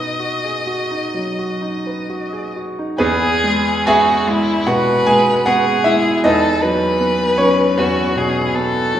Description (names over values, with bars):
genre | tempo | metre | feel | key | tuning
classical, romantic duo for violin and grand piano | 63-79 BPM | 4/4 | rubato | E major | A4 = 440 Hz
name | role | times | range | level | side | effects
rich violin | melody | 0.0-9.0 s | E4 to D#5 | -19 LUFS | left 1 dB | none
bright concert grand piano | accompaniment | 0.0-9.0 s | E2 to G#5 | -16 LUFS | right 1 dB | none
room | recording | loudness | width
wet recital hall reverb, RT60 1.7 s | heard from further back in the room | -14 LUFS | side -10 dB against mid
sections
0.0-3.0 A section; 3.0-9.0 B section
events
none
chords
0.0 B; 3.0 E; 6.2 B7/E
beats
0.21 1.16 2.10 | 2.99 3.87 4.67 5.46 | 6.24 7.00 7.78 8.55